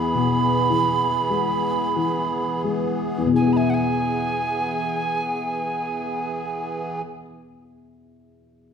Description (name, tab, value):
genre	celtic folk, Celtic slow air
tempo	42-57 BPM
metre	3/4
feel	rubato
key	E major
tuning	A4 = 440 Hz
part	breathy mellow tin whistle	melody	0.0-7.0 s	F#5 to B5	-24 LUFS	right 3 dB	none
part	dark upright piano	accompaniment	0.0-8.7 s	E2 to E5	-24 LUFS	left 4 dB	none
part	musette accordion	sustained chords	0.0-7.0 s	E3 to G#4	-28 LUFS	right 3 dB	none
room	wet recital hall reverb, RT60 1.6 s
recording	dark, warm production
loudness	-20 LUFS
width	side -7 dB against mid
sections	0.0-3.4 A section; 3.4-7.5 B section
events	slowing down 0.0-3.4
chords	0.0 E